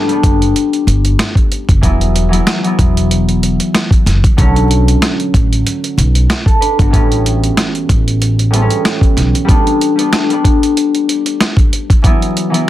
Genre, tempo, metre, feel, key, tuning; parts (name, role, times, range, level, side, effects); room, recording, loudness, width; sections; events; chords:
hip hop, boom-bap hip-hop; 94 BPM; 4/4; swing 54% on 16ths; A4 = 439 Hz
concert harp; accompaniment; 0.0-12.7 s; A2 to B4; -15 LUFS; left 1 dB; high-pass filter, low-pass filter
dusty soul sampler-style drum kit; drums; 0.1-12.7 s; hi-hat, kick drum, rim click, snare drum; -12 LUFS; equal; overdrive
upright bass; bass; 0.2-9.3 s; E1 to B1; -13 LUFS; equal
little or no reverb; dense, heavily limited modern master, vinyl crackle; -10 LUFS; side -14 dB against mid
0.0-12.7 A section
0.0 Gadd9; 1.8 Esus2; 4.4 Bm7; 6.9 A7; 9.5 Gadd9; 12.0 Esus2